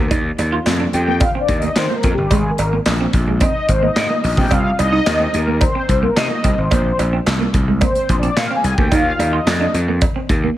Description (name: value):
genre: early-eighties boogie funk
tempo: 109 BPM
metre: 4/4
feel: straight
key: unclear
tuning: A4 = 440 Hz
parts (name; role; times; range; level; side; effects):
- semi-hollow electric guitar; riff; 0.0-10.5 s; Ab3 to F4; -24 LUFS; right 4 dB; lush chorus
- gritty slap bass; bass; 0.0-10.5 s; G1 to Eb3; -18 LUFS; equal; overdrive
- modern studio drum kit; drums; 0.1-10.4 s; handclaps, hi-hat, kick drum, snare drum; -19 LUFS; equal; gated reverb
- cowbell; percussion; 0.1-10.1 s; none; -27 LUFS; right 6 dB; none
- mellow synth brass; accompaniment; 0.9-9.8 s; G4 to Ab5; -20 LUFS; left 2 dB; chorus
room: light reverb, studio reverb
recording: none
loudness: -14 LUFS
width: side -14 dB against mid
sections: 0.0-10.6 A section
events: analog polysynth solo 0.0-10.6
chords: 0.1 Ebmaj9; 2.3 Ab; 4.5 Cm7; 6.7 Bb9; 8.9 Ebsus2